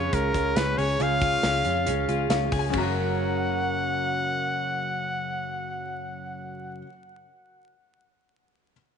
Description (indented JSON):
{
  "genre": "jangly indie pop",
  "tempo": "138 BPM",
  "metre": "4/4",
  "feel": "straight",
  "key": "F# major",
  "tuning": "A4 = 440 Hz",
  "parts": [
    { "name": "bright trumpet", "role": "melody", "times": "0.0-6.8 s", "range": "A#4 to F#5", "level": "-28 LUFS", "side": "left 1 dB", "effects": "tape echo" },
    { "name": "clear upright piano", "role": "accompaniment", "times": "0.0-8.7 s", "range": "C#4 to G#5", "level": "-33 LUFS", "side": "left 10 dB", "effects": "none" },
    { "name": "fingerpicked steel-string acoustic guitar", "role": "accompaniment", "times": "0.0-7.0 s", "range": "F#2 to A#4", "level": "-32 LUFS", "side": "right 13 dB", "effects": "none" },
    { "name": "direct-recorded clean electric guitar", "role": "arpeggios", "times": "0.0-7.0 s", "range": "F#2 to A#4", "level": "-32 LUFS", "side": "left 10 dB", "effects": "spring reverb, tape echo" },
    { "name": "vintage muted picked electric bass", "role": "bass", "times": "0.0-6.8 s", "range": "F#1 to E#2", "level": "-30 LUFS", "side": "equal", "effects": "none" },
    { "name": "modern studio drum kit", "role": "drums", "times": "0.1-2.8 s", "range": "crash cymbal, hi-hat, kick drum, snare drum", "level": "-31 LUFS", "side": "right 1 dB", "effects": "none" }
  ],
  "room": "moderate echo chamber reverb, RT60 1.9 s",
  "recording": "1960s-style stereo with parts hard left and right, vinyl crackle, nothing above 10.4 kHz",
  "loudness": "-23 LUFS",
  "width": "side -7 dB against mid",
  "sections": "0.0-2.7 A section; 2.7-6.2 B section",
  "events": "upright piano fill 2.1-2.7",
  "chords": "0.0 C#; 2.7 F#"
}